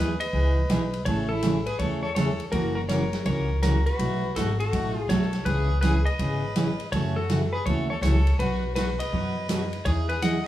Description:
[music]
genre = country, western swing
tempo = 164 BPM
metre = 4/4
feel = swing 65% on 8ths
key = unclear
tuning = A4 = 441 Hz
[part]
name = clean lap steel guitar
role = melody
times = 0.0-10.5 s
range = A4 to F#5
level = -31 LUFS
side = left 2 dB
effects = none
[part]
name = clear fiddle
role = second line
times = 0.0-10.4 s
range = E4 to D#5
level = -34 LUFS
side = equal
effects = none
[part]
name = picked steel-string acoustic guitar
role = accompaniment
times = 0.0-10.3 s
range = B2 to G#4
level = -27 LUFS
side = right 1 dB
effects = none
[part]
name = upright bass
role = bass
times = 0.0-10.4 s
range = F#1 to F#2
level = -26 LUFS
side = equal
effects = none
[part]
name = swinging big-band drum kit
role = drums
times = 0.2-10.3 s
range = hi-hat, kick drum, ride cymbal, snare drum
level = -33 LUFS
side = equal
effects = none
[sound]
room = light reverb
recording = small room ambience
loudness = -22 LUFS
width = side -13 dB against mid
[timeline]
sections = 0.0-10.5 A section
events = none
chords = 0.0 Emaj7; 1.1 Amaj7; 2.5 F#7; 4.0 B7; 5.5 C#m7; 6.9 F#m7; 8.4 B; 9.9 Emaj7

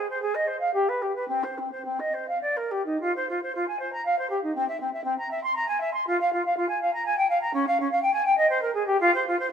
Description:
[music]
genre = classical, baroque-style fantasia for unaccompanied flute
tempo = 99-125 BPM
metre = 3/4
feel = rubato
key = C minor, F minor from 3.0 s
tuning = A4 = 439 Hz
[part]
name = silver concert flute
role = solo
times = 0.0-9.5 s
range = C4 to C6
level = -23 LUFS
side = equal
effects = none
[sound]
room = wet recital hall reverb, RT60 1.8 s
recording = close, detailed microphones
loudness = -23 LUFS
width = side -7 dB against mid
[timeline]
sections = 0.0-3.0 A section; 3.0-9.5 A section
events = none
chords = none

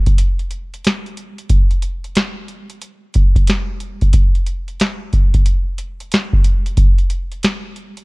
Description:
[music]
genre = hip hop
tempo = 91 BPM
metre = 4/4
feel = swing 65% on 16ths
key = none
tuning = none
[part]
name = booming analog drum machine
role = drums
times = 0.1-8.0 s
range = hi-hat, kick drum, snare drum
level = -14 LUFS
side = equal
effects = none
[sound]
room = little or no reverb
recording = dry, close 1970s-style studio recording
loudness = -14 LUFS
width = side -28 dB against mid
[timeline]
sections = 0.0-8.0 A section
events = none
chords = none

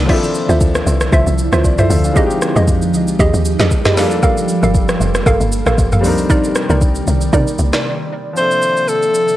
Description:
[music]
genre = amapiano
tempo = 116 BPM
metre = 4/4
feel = swing 55% on 16ths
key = D phrygian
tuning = A4 = 440 Hz
[part]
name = warm grand piano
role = accompaniment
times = 0.0-9.4 s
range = F3 to E5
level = -21 LUFS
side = left 2 dB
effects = none
[part]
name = ethereal airy pad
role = sustained chords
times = 0.0-9.4 s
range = C3 to E5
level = -21 LUFS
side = right 2 dB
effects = ensemble chorus, built-in reverb, sidechain pumping
[part]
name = hollow square pluck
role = stabs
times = 0.0-7.8 s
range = Eb4 to F5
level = -19 LUFS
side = right 1 dB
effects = chorus, tape echo
[part]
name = woody log drum bass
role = bass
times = 0.0-7.7 s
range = F1 to C3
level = -16 LUFS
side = equal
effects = none
[part]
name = smooth R&B drum kit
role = drums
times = 0.1-9.4 s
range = crash cymbal, hi-hat, kick drum, rim click, shaker, snare drum, toms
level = -16 LUFS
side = equal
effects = none
[part]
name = breathy alto saxophone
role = melody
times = 8.4-9.4 s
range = A4 to C5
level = -12 LUFS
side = left 1 dB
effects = none
[sound]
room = light reverb, digital ambience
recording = dry, gritty hardware recording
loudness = -12 LUFS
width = side -14 dB against mid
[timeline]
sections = 0.0-8.4 A section; 8.4-9.4 B section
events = drop 0.0-8.4; break 7.8-8.4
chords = 0.1 Dm9; 2.2 Fm9; 4.0 Gm9; 6.0 Cm9; 8.4 Dm9

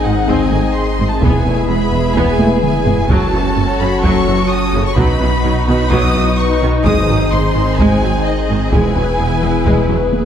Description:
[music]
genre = cinematic, hybrid orchestral and electronic film score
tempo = 128 BPM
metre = 4/4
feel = straight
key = unclear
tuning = A4 = 440 Hz
[part]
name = rich chamber violin section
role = melody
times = 0.0-10.1 s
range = D#5 to D#6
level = -21 LUFS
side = left 1 dB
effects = none
[part]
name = clear symphonic violin section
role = second line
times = 0.0-10.2 s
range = F#4 to E5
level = -25 LUFS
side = left 2 dB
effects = none
[part]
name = bright symphonic viola section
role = accompaniment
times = 0.0-10.2 s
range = C#3 to G#4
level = -20 LUFS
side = right 1 dB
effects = none
[part]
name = dark French horn section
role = sustained chords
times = 0.0-10.2 s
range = B3 to F#4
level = -20 LUFS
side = left 5 dB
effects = none
[part]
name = hollow soft pad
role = sustained chords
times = 0.0-10.2 s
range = D#3 to C#5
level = -20 LUFS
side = equal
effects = ensemble chorus
[part]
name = clear symphonic double bass section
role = bass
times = 0.0-10.0 s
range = E1 to B1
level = -21 LUFS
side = right 3 dB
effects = none
[part]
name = pure sine sub bass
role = bass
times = 0.0-10.2 s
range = E1 to B1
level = -21 LUFS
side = equal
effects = none
[part]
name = rich symphonic cello section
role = bass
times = 0.1-10.0 s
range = E2 to B2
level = -22 LUFS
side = right 3 dB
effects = none
[part]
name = taiko ensemble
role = drums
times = 0.3-10.2 s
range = none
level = -19 LUFS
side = equal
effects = none
[sound]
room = wet scoring stage reverb, RT60 1.7 s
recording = dark, warm production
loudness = -12 LUFS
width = side -9 dB against mid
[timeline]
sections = 0.0-10.2 A section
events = drum fill 2.4-3.1, 9.9-10.2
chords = 0.0 G#; 1.2 E; 3.1 F#m; 5.0 B; 6.8 G#; 8.7 E

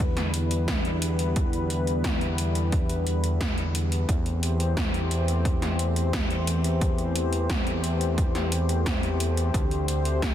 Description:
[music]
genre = synthwave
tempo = 88 BPM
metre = 4/4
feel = straight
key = unclear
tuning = A4 = 440 Hz
[part]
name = warm analog pad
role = sustained chords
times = 0.0-10.3 s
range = D3 to C5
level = -29 LUFS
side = left 2 dB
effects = chorus, sidechain pumping
[part]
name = fat analog bass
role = bass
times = 0.0-10.3 s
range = D2 to E2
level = -26 LUFS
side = equal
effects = sidechain pumping
[part]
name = 80s electronic pad drums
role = drums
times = 0.0-10.3 s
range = hi-hat, snare drum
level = -31 LUFS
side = equal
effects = overdrive
[part]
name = electronic kick drum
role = drums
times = 0.0-10.3 s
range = none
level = -27 LUFS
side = equal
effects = overdrive
[sound]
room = light reverb, digital ambience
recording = dense, heavily limited modern master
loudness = -23 LUFS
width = side -11 dB against mid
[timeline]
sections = 0.0-10.3 A section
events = none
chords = 0.0 Em7; 4.1 C6/E; 9.5 D7sus4

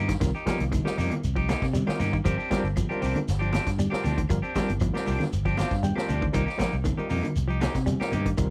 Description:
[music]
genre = afrobeat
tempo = 118 BPM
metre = 4/4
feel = straight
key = C minor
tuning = A4 = 440 Hz
[part]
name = electric guitar at the edge of break-up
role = stabs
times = 0.0-8.3 s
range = F3 to G4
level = -34 LUFS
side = equal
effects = none
[part]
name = fingered electric bass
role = bass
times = 0.0-8.5 s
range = G1 to C3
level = -30 LUFS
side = equal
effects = none
[part]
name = semi-hollow electric guitar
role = arpeggios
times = 0.1-8.5 s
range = D3 to G3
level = -34 LUFS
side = equal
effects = none
[part]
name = vintage drum kit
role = drums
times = 0.1-8.5 s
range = hi-hat, kick drum, snare drum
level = -34 LUFS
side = equal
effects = none
[part]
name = shekere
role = percussion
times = 0.1-8.5 s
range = none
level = -37 LUFS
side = equal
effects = none
[part]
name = overdriven tine electric piano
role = accompaniment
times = 0.2-8.5 s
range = G3 to G5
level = -35 LUFS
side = equal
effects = fast tremolo
[part]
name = claves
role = percussion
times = 0.2-8.5 s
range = none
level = -50 LUFS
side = equal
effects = none
[part]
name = congas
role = percussion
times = 0.5-8.3 s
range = none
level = -36 LUFS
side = equal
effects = none
[sound]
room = small room reverb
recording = dry, close 1970s-style studio recording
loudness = -26 LUFS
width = mono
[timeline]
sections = 0.0-8.5 A section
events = tine electric piano fill 5.3-6.3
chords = 0.0 Cm7; 2.3 G7sus4; 6.3 Cm7

